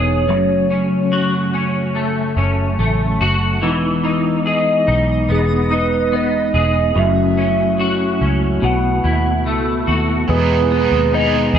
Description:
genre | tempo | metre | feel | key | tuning
dream pop | 72 BPM | 4/4 | straight | E major | A4 = 440 Hz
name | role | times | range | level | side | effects
hollow clarinet-like synth lead | melody | 0.0-11.6 s | G#4 to F#5 | -20 LUFS | right 1 dB | chorus, phaser, tape echo
percussive tonewheel organ | sustained chords | 0.0-11.6 s | B2 to G#4 | -21 LUFS | right 1 dB | fast rotary speaker
electric guitar at the edge of break-up | arpeggios | 0.0-11.6 s | F#2 to G#4 | -19 LUFS | left 2 dB | ensemble chorus, tape echo
vintage muted fingered electric bass | bass | 0.0-11.6 s | E1 to E2 | -20 LUFS | equal | none
twinkling granular texture | texture | 5.2-11.6 s | D#5 | -28 LUFS | right 1 dB | built-in reverb, tape echo
raw garage guitar | accompaniment | 10.3-11.6 s | E3 to G#4 | -20 LUFS | right 5 dB | overdrive, harmonic tremolo, analog chorus
room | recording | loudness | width
moderate plate reverb, RT60 2.6 s | none | -14 LUFS | side -8 dB against mid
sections
0.0-10.3 A section; 10.3-11.6 B section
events
none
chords
0.3 F#m; 3.6 Emaj7; 7.0 F#m7; 8.6 B7sus4; 10.3 Emaj7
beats
| 0.29 1.13 1.96 2.79 | 3.63 4.46 5.29 6.13 | 6.96 7.79 8.63 9.46 | 10.29 11.13

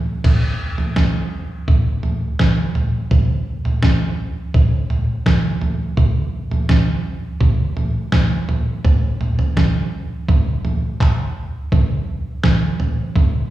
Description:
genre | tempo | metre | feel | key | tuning
folk | 84 BPM | 4/4 | straight | none | none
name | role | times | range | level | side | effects
lo-fi sampler-style drum kit | drums | 0.2-13.3 s | crash cymbal, handclaps, kick drum, snare drum, toms | -16 LUFS | right 1 dB | none
room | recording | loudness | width
moderate club reverb, RT60 0.6 s | live gig heard through the venue's PA, recital hall reverb, small room ambience | -16 LUFS | side -14 dB against mid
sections
0.2-11.7 A section; 11.7-13.5 B section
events
none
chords
none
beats
| 0.24 0.96 1.68 2.40 | 3.11 3.83 4.55 5.26 | 5.98 6.70 7.42 8.13 | 8.85 9.57 10.29 11.00 | 11.72 12.44 13.15

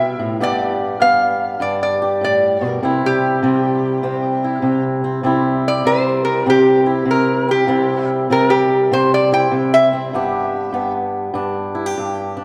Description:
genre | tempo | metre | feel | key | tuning
acoustic country blues, solo or duo | 99 BPM | 4/4 | swing 66% on 8ths | unclear | A4 = 442 Hz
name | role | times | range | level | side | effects
lap resonator guitar | melody | 0.0-10.9 s | G4 to G5 | -18 LUFS | equal | none
fingerpicked swing-style acoustic guitar | accompaniment | 0.0-12.4 s | G2 to G4 | -20 LUFS | equal | none
room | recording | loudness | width
wet concert hall reverb, RT60 2.5 s | recorded in a church or concert hall | -17 LUFS | mono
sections
0.0-12.4 A section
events
resonator guitar played with a steel bar solo 0.0-12.4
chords
0.4 G; 2.8 C; 10.1 G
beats
| 0.40 1.01 1.62 2.22 | 2.83 3.44 4.05 4.65 | 5.26 5.87 6.48 7.09 | 7.70 8.31 8.92 9.53 | 10.14 10.75 11.36 11.97

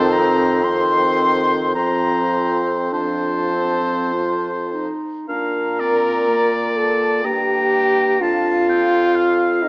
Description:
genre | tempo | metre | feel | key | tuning
classical, slow romantic movement for wind quintet | 49-65 BPM | 3/4 | rubato | Bb major | A4 = 440 Hz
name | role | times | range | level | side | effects
concert flute | melody | 0.0-9.7 s | Eb5 to C6 | -23 LUFS | left 1 dB | none
clear oboe | second line | 0.0-9.7 s | C5 to Bb5 | -22 LUFS | equal | none
dark clarinet | accompaniment | 0.0-9.7 s | Bb3 to F4 | -27 LUFS | right 1 dB | none
mellow French horn | accompaniment | 0.0-9.7 s | Eb3 to Bb4 | -20 LUFS | equal | none
warm bassoon | bass | 0.0-9.7 s | F2 to Bb2 | -22 LUFS | equal | none
room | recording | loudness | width
moderate recital hall reverb, RT60 1.8 s | small speaker sound | -16 LUFS | side -28 dB against mid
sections
0.0-5.3 A section; 5.3-9.7 B section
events
none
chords
0.0 F7(no3); 1.8 F; 5.3 Bb; 8.2 F5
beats
0.65 | 1.76 2.94 4.13 | 5.29 6.29 7.24 | 8.21 9.15

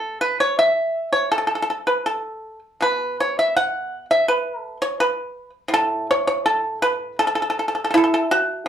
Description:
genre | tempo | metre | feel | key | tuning
chinese traditional, Chinese solo plucked strings | 82 BPM | 2/4 | uneven beats, rubato | A gong mode | A4 = 440 Hz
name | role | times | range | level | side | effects
pipa | solo | 0.0-8.7 s | A2 to F#5 | -18 LUFS | equal | none
room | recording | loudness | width
moderate small room reverb, RT60 0.6 s | heard from further back in the room, small room reverb | -18 LUFS | side -9 dB against mid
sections
0.0-8.7 A section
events
none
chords
none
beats
0.56 | 1.29 2.05 | 2.81 3.54 | 4.25 4.97 | 5.70 6.43 | 7.17 7.93

